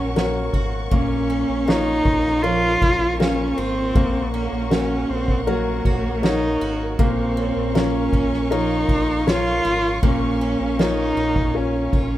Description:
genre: pop ballad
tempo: 79 BPM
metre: 4/4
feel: straight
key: Bb minor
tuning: A4 = 440 Hz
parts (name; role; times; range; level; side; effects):
- warm cello; melody; 0.0-12.2 s; Bb3 to F4; -22 LUFS; equal; none
- warm grand piano; accompaniment; 0.0-12.2 s; Bb3 to F5; -26 LUFS; left 5 dB; none
- warm studio string section; sustained chords; 0.0-12.2 s; Bb4 to Db6; -31 LUFS; equal; none
- picked steel-string acoustic guitar; arpeggios; 0.0-12.2 s; Bb2 to Gb4; -28 LUFS; right 7 dB; none
- sub bass with octave; bass; 0.0-12.2 s; Ab1 to Bb1; -27 LUFS; equal; none
- soft-mallet drum kit; drums; 0.2-12.1 s; kick drum, ride cymbal, snare drum; -24 LUFS; equal; none
room: moderate studio reverb, RT60 0.6 s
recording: rough home demo mix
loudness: -18 LUFS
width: side -14 dB against mid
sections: 0.0-12.2 A section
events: none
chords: 0.0 Gb/Bb; 0.9 Bbm; 4.0 Gb/Bb; 7.0 Bbm

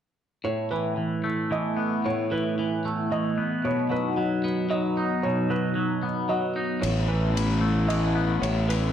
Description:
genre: post-rock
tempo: 113 BPM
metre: 3/4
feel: straight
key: A lydian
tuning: A4 = 440 Hz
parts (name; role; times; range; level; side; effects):
- warm analog pad; sustained chords; 0.4-8.9 s; F#3 to E4; -29 LUFS; equal; chorus
- felt-muted upright piano; arpeggios; 0.4-8.9 s; B4 to D#5; -32 LUFS; right 4 dB; slapback echo
- twangy electric guitar; arpeggios; 0.4-8.9 s; A2 to D#4; -27 LUFS; left 1 dB; phaser, slapback echo
- fuzz fingered electric bass; bass; 6.8-8.9 s; A1; -24 LUFS; equal; overdrive
- ride cymbal; drums; 6.8-8.8 s; none; -34 LUFS; left 6 dB; none
room: light reverb, small room ambience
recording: dark, warm production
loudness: -23 LUFS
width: side -9 dB against mid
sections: 0.4-8.9 A section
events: none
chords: 0.4 Asus2; 3.6 B; 6.8 Asus2

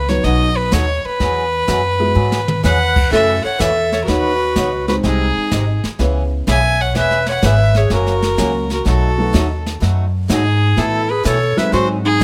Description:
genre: country, western swing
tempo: 125 BPM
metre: 4/4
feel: swing 67% on 8ths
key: E major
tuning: A4 = 439 Hz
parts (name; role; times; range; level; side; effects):
- clear fiddle; melody; 0.0-12.2 s; G#4 to G#5; -21 LUFS; equal; none
- upright bass; bass; 0.0-12.2 s; E1 to B2; -20 LUFS; equal; none
- dark upright piano; accompaniment; 0.1-12.2 s; E3 to C5; -24 LUFS; equal; none
- jazz brush drum kit; drums; 0.1-12.2 s; brushed snare drum, crash cymbal, hi-hat, kick drum, snare drum, toms; -24 LUFS; equal; none
- picked acoustic archtop guitar; accompaniment; 0.2-12.2 s; B2 to C#5; -27 LUFS; equal; none
- breathy clarinet; second line; 2.6-12.2 s; D#4 to E5; -23 LUFS; equal; none
room: light reverb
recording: none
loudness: -16 LUFS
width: mono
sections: 0.0-12.2 A section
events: drum fill 2.2-2.6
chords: 0.2 B; 1.2 Eadd9; 3.1 F#m7; 4.1 Badd9; 5.0 G#/B#; 6.0 C#m7; 6.9 E6; 7.9 F#; 8.9 B7; 10.8 Asus2; 11.7 G#7

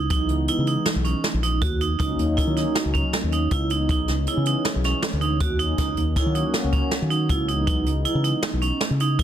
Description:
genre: progressive instrumental, band music in an uneven meter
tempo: 159 BPM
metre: 5/4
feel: straight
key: C# dorian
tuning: A4 = 440 Hz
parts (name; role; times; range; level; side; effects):
- vibraphone with hard mallets; arpeggios; 0.0-9.2 s; C#4 to F#4; -26 LUFS; right 6 dB; digital delay
- fingered electric bass; bass; 0.0-9.2 s; A#1 to D#3; -24 LUFS; left 1 dB; none
- sweeping resonant pad; accompaniment; 0.1-8.2 s; E3 to F#4; -28 LUFS; left 2 dB; chorus, phaser
- jazz brush drum kit; drums; 0.1-9.2 s; hi-hat, kick drum, snare drum; -26 LUFS; equal; none
room: light reverb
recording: dense, heavily limited modern master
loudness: -20 LUFS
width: side -10 dB against mid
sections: 0.0-9.2 A section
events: none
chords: 0.0 C#m9; 1.6 D#m7; 3.5 C#m9; 5.4 D#m7; 7.3 C#m9

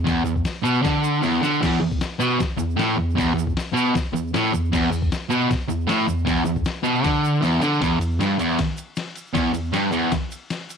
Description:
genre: garage rock duo or trio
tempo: 155 BPM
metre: 4/4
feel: straight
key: E minor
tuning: A4 = 440 Hz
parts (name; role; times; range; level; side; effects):
- fuzz guitar; riff; 0.0-10.1 s; E2 to D3; -20 LUFS; right 1 dB; distortion
- boom bap sampler-style drum kit; drums; 0.1-10.8 s; crash cymbal, hi-hat, kick drum, ride cymbal, snare drum; -27 LUFS; left 2 dB; none
- egg shaker; percussion; 0.1-10.8 s; none; -43 LUFS; right 14 dB; none
room: little or no reverb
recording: 1960s-style stereo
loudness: -19 LUFS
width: side -6 dB against mid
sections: 0.0-7.8 A section; 7.8-10.8 B section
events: drum fill 1.2-1.6, 7.4-7.8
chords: none

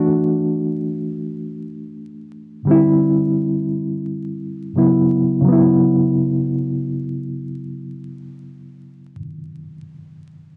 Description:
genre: hip hop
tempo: free time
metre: none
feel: none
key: unclear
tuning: A4 = 440 Hz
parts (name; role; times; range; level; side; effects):
- reed electric piano; accompaniment; 0.0-10.6 s; C#3 to F#4; -20 LUFS; equal; fast tremolo, low-pass filter, cassette tape
room: wet booth ambience, RT60 0.2 s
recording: home recording on cassette, vinyl crackle, nothing above 10.5 kHz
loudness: -18 LUFS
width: mono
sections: 0.0-5.5 A section; 5.5-8.2 B section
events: filter sweep on reed electric piano 0.0-5.5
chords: 0.0 E9sus4; 2.7 D9sus4; 4.8 Bsus24/C#

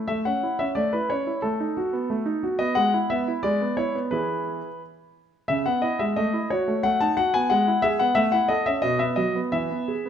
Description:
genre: classical-period piano sonatina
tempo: 88 BPM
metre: 2/4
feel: rubato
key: A major, E major from 5.5 s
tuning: A4 = 440 Hz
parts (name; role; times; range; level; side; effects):
- clear concert grand piano; solo; 0.0-10.1 s; B2 to A5; -22 LUFS; equal; none
room: moderate recital hall reverb, RT60 1.4 s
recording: dark, warm production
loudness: -21 LUFS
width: side -8 dB against mid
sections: 0.1-10.1 A section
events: none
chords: 0.1 A; 1.4 B7/A; 2.8 E/G#; 4.1 E; 5.5 C#m7; 6.2 F#m7/A; 6.8 B7/A; 7.5 E/G#; 8.2 A; 8.8 B; 9.5 E

